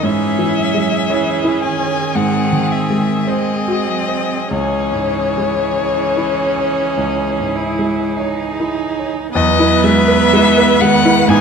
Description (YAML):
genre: classical, slow romantic movement for piano quintet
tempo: 46-64 BPM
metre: 4/4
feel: rubato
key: C# minor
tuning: A4 = 440 Hz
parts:
  - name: rich violin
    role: melody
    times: 0.0-11.4 s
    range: C#5 to G#5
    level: -18 LUFS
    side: left 7 dB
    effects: none
  - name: rich cello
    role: second line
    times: 0.0-11.4 s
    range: D#3 to G#3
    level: -22 LUFS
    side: right 9 dB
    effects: none
  - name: rich violin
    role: second line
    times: 0.0-11.4 s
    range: G#4 to B4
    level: -23 LUFS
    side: left 1 dB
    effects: none
  - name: clear grand piano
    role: accompaniment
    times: 0.0-11.4 s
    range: C#2 to C#5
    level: -17 LUFS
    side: equal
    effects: none
  - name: clear viola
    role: accompaniment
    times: 0.0-11.4 s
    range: B3 to E4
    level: -21 LUFS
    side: right 5 dB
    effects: none
room: moderate recital hall reverb, RT60 1.4 s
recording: none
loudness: -13 LUFS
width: side -6 dB against mid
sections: 0.0-9.3 A section; 9.3-11.4 B section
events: none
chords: 0.0 C#m/G#; 2.2 G#7; 4.5 C#m; 9.3 E